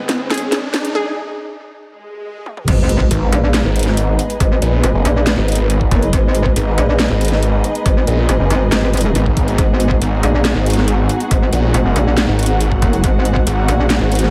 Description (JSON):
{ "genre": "heavy wobble dubstep", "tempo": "139 BPM", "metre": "4/4", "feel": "half-time", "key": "G# minor", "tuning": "A4 = 440 Hz", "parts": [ { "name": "unison pluck", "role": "melody", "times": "0.0-2.6 s", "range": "G#4 to B4", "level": "-26 LUFS", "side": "equal", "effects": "tape echo" }, { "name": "rich studio string section", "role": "sustained chords", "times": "0.0-14.3 s", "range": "G#2 to B4", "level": "-26 LUFS", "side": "equal", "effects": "sidechain pumping, low-pass filter" }, { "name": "riser, swell and impact", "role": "sound effects", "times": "0.0-4.4 s", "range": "none", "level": "-26 LUFS", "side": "equal", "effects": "none" }, { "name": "dark symphonic string section", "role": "texture", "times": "0.0-14.3 s", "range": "B3 to F#5", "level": "-26 LUFS", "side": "equal", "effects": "sidechain pumping" }, { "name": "dubstep drum kit", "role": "drums", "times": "0.1-14.3 s", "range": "crash cymbal, handclaps, hi-hat, snare drum, toms", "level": "-23 LUFS", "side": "equal", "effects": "none" }, { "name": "metallic wobble bass", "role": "bass", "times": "2.7-14.0 s", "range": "F#1 to A#1", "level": "-18 LUFS", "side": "equal", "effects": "chorus, overdrive" }, { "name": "electronic kick drum", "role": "drums", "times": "2.7-13.4 s", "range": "none", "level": "-18 LUFS", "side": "equal", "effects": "none" }, { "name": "snarling distorted saw bass", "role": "bass", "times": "3.1-14.3 s", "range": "F#1 to A#1", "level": "-18 LUFS", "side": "equal", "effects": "distortion, overdrive" } ], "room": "light reverb", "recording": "high-pass filter", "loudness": "-15 LUFS", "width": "mono", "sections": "0.0-2.7 A section; 2.7-14.3 B section", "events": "build-up 0.0-2.7; drum fill 0.0-1.0, 2.5; riser 0.0-1.0; break 1.0-2.7; swell 1.8-2.7; drop 2.7-14.3; impact 2.7-4.4", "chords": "0.0 G#m" }